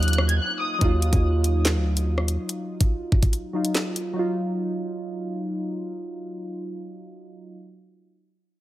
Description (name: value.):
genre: hip hop, drill.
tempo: 143 BPM.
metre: 4/4.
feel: half-time.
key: Eb minor.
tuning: A4 = 440 Hz.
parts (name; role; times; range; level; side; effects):
dark studio violin section; melody; 0.0-0.8 s; Eb6 to Ab6; -29 LUFS; left 2 dB; low-pass filter, tape echo.
glassy digital keys; accompaniment; 0.0-7.5 s; Gb3 to F4; -28 LUFS; right 1 dB; chorus, low-pass filter.
hollow soft pad; sustained chords; 0.0-0.8 s; Gb3 to F4; -35 LUFS; right 4 dB; chorus.
hard-hitting 808-style bass; bass; 0.0-2.4 s; D2 to Eb2; -21 LUFS; equal; none.
drill drum kit; drums; 0.0-4.1 s; handclaps, hi-hat, kick drum, rim click, snare drum; -23 LUFS; equal; overdrive.
room: digital ambience.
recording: none.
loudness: -22 LUFS.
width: side -15 dB against mid.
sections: 0.8-7.5 A section.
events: break 0.4-0.8; filter sweep on synth keys 0.8-7.5.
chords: 0.0 Ebmadd9.